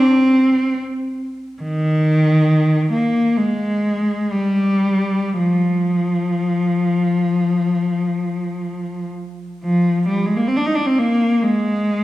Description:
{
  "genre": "classical, free, expressive piece for unaccompanied cello",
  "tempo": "47-73 BPM",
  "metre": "4/4",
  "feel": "rubato",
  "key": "F dorian",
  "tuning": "A4 = 440 Hz",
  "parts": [
    { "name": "rich cello", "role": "solo", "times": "0.0-12.0 s", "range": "Eb3 to Eb4", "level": "-16 LUFS", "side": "equal", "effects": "none" }
  ],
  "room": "wet recital hall reverb, RT60 1.7 s",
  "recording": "heard from further back in the room",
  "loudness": "-16 LUFS",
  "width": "side -16 dB against mid",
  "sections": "0.0-9.7 A section; 9.7-12.0 A section",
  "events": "none",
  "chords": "none"
}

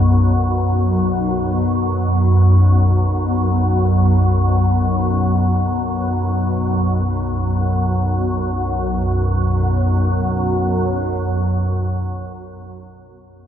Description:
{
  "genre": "world meditative, free-time meditation music",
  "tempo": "free time",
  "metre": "none",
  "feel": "none",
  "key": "unclear",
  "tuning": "A4 = 439 Hz",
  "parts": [
    { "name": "soft additive organ-like pad", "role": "solo", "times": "0.0-12.6 s", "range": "B1 to F#2", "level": "-15 LUFS", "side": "equal", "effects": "ensemble chorus, built-in reverb, phaser" }
  ],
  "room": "wet church reverb, RT60 2.9 s",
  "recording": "dark, warm production",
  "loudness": "-15 LUFS",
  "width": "side -9 dB against mid",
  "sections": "0.0-8.9 A section; 8.9-13.0 B section",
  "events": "none",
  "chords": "none"
}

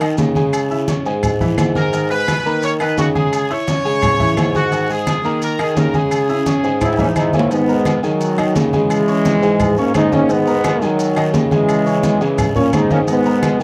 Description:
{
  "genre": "latin, salsa",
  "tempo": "172 BPM",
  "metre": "4/4",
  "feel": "straight",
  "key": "G# minor",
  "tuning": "A4 = 440 Hz",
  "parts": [
    { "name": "clear upright piano", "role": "accompaniment", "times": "0.0-13.6 s", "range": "D#3 to E6", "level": "-24 LUFS", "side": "equal", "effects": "none" },
    { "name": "dark bassoon", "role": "bass", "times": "0.0-13.6 s", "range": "G#2 to D#3", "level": "-22 LUFS", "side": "equal", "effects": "none" },
    { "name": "agogo bells and timbales", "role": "percussion", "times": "0.0-13.6 s", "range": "none", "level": "-28 LUFS", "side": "equal", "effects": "none" },
    { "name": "claves", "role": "percussion", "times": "0.0-13.6 s", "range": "none", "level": "-35 LUFS", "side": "equal", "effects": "none" },
    { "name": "congas", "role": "percussion", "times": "0.0-13.6 s", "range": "none", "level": "-24 LUFS", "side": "equal", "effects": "none" },
    { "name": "maracas", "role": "percussion", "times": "0.0-13.6 s", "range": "none", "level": "-39 LUFS", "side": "equal", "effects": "none" },
    { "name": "guiro", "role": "percussion", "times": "0.2-13.6 s", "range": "none", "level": "-39 LUFS", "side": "equal", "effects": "none" },
    { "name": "bright horn section", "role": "melody", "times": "1.8-7.1 s", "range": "F#4 to C#5", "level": "-23 LUFS", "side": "equal", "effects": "none" },
    { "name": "mellow trombone section", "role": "second line", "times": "6.3-7.5, 11.9-12.5 s", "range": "E3 to E4", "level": "-25 LUFS", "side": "equal", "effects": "none" },
    { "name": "brilliant trombone section", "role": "melody", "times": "7.0-13.6 s", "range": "D#3 to D#4", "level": "-19 LUFS", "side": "equal", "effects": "tape echo" }
  ],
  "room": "light reverb",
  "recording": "dry, close 1970s-style studio recording",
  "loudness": "-16 LUFS",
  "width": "mono",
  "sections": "0.0-7.5 A section; 7.5-13.6 B section",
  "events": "drum fill 6.8-7.5",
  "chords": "0.0 G#5; 0.5 C#m; 1.9 G#madd9; 3.3 C#m; 4.7 G#sus2; 6.1 C#m; 7.5 G#madd9; 8.9 C#m; 10.3 G#madd9; 11.7 C#m; 13.1 G#madd9"
}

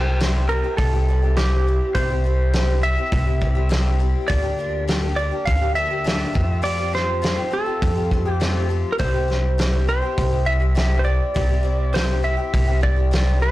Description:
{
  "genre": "folk rock and heartland rock",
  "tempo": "102 BPM",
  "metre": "4/4",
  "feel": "straight",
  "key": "C mixolydian",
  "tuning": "A4 = 436 Hz",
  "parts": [
    { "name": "clean lap steel guitar", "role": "melody", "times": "0.0-13.5 s", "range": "G4 to F5", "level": "-24 LUFS", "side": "right 2 dB", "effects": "plate reverb" },
    { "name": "picked twelve-string acoustic guitar", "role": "accompaniment", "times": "0.0-13.5 s", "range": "C3 to G4", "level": "-28 LUFS", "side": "left 6 dB", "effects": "plate reverb" },
    { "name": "upright bass", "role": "bass", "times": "0.0-13.5 s", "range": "C2 to F2", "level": "-20 LUFS", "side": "equal", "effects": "none" },
    { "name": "loose indie drum kit", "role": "drums", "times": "0.2-13.3 s", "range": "hi-hat, kick drum, snare drum", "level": "-25 LUFS", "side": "equal", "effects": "none" }
  ],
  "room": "light reverb",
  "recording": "blown-out, overdriven recording, overdrive",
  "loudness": "-18 LUFS",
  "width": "side -16 dB against mid",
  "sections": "0.0-13.5 A section",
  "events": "none",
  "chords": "0.0 C; 4.3 Bb6/D; 6.4 Fadd9; 9.0 C"
}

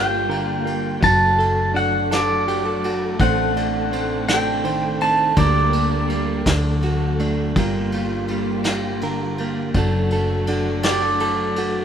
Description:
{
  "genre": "acoustic folk-pop ballad",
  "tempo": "55 BPM (dotted quarters)",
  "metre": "6/8",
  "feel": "straight",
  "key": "G harmonic minor",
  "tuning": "A4 = 440 Hz",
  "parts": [
    { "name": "pedal steel guitar", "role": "melody", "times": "0.0-6.8, 10.8-11.8 s", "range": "D5 to A5", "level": "-20 LUFS", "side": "right 1 dB", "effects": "none" },
    { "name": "direct-recorded clean electric guitar", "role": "accompaniment", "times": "0.0-11.8 s", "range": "G2 to C5", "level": "-24 LUFS", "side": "right 2 dB", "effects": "none" },
    { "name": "muted chamber string section", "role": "sustained chords", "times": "0.0-11.8 s", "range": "C3 to Bb4", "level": "-29 LUFS", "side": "left 3 dB", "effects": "none" },
    { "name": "hollow-body short-scale fingered electric bass", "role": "bass", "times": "0.0-11.8 s", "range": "F#1 to D2", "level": "-24 LUFS", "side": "equal", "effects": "none" },
    { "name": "vintage brush drum kit", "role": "drums", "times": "0.3-11.7 s", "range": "kick drum, ride cymbal, snare drum", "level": "-26 LUFS", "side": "equal", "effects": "none" }
  ],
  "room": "light reverb",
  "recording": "minimal, uncompressed stereo recording",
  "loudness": "-17 LUFS",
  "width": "side -8 dB against mid",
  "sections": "0.0-11.8 A section",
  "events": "none",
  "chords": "0.0 Gm7; 1.0 D/F#; 3.2 Adim; 5.4 Gm/D; 6.5 D; 7.6 Gm7; 9.7 D/F#"
}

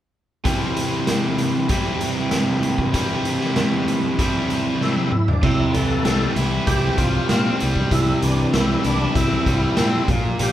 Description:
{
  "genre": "classic rock",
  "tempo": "97 BPM",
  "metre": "4/4",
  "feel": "straight",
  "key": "C mixolydian",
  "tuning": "A4 = 440 Hz",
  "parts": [
    { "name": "cranked stack guitar", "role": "riff", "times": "0.4-10.5 s", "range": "Bb2 to E4", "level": "-21 LUFS", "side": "equal", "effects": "overdrive" },
    { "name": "raw garage drum kit", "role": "drums", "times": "0.5-10.5 s", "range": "crash cymbal, hi-hat, kick drum, snare drum, toms", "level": "-22 LUFS", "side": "equal", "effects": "none" },
    { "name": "overdriven tonewheel organ", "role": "melody", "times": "4.8-10.5 s", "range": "D4 to A4", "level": "-24 LUFS", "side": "equal", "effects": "slow rotary speaker, chorus vibrato" },
    { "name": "picked electric bass", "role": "bass", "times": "5.4-10.5 s", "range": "Bb1 to Bb2", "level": "-23 LUFS", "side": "equal", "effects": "none" }
  ],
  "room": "moderate studio reverb, RT60 0.6 s",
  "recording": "band playing live in one room",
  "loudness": "-18 LUFS",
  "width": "side -12 dB against mid",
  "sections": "0.5-5.4 A section; 5.4-10.5 B section",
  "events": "drum fill 4.8-5.4",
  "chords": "0.5 C; 5.1 N.C.; 5.4 C"
}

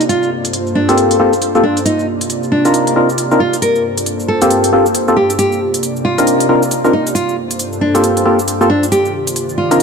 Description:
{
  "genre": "UK garage, two-step garage",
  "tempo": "136 BPM",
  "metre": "4/4",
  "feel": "swing 60% on 16ths",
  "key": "G minor",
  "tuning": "A4 = 440 Hz",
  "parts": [
    { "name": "airy breathy pad", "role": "sustained chords", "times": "0.0-9.8 s", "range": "G2 to D5", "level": "-20 LUFS", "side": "equal", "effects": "chorus" },
    { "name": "electronic hi-hat and cabasa", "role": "drums", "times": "0.0-9.8 s", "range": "none", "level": "-22 LUFS", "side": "right 1 dB", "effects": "low-pass filter on perc, small room ambience, low-pass filter on hats" },
    { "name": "nylon-string guitar", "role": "melody", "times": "0.1-9.8 s", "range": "D4 to Bb4", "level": "-17 LUFS", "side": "right 1 dB", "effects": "vintage 12-bit sampler grit, tape echo" },
    { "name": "percussive organ stab", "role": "stabs", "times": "0.9-9.8 s", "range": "Bb3 to Bb4", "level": "-13 LUFS", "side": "left 1 dB", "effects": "lush chorus, tape echo" }
  ],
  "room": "moderate lush hall reverb, RT60 2.1 s",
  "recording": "none",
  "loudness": "-11 LUFS",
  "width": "side -5 dB against mid",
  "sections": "0.0-9.8 A section",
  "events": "none",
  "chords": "0.1 Gm11; 1.9 Cm11; 3.6 Gm11; 5.4 Cm11; 7.2 Gm11; 8.9 Cm11"
}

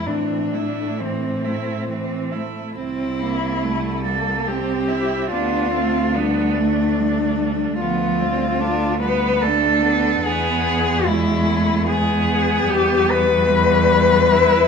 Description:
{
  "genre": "classical, lyrical piece for cello ensemble",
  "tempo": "73 BPM",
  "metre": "3/4",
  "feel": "rubato",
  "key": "unclear",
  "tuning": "A4 = 442 Hz",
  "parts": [
    { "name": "rich cello", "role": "melody", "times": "0.0-14.7 s", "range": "C4 to B4", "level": "-20 LUFS", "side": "left 5 dB", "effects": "none" },
    { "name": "rich cello", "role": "second line", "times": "0.0-14.7 s", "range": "F3 to E4", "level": "-24 LUFS", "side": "right 9 dB", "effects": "none" },
    { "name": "rich cello", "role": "accompaniment", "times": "0.0-14.7 s", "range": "E3 to D4", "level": "-26 LUFS", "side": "equal", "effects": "none" },
    { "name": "warm cello", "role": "bass", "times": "0.0-14.7 s", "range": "C2 to A2", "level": "-24 LUFS", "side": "right 2 dB", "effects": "none" }
  ],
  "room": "wet recital hall reverb, RT60 1.5 s",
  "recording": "none",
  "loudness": "-17 LUFS",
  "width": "side -6 dB against mid",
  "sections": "0.0-2.8 A section; 2.8-14.7 B section",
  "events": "none",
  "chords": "0.1 Am; 2.8 C7; 5.3 Dm; 7.8 Bdim/D; 10.2 E; 12.7 Em"
}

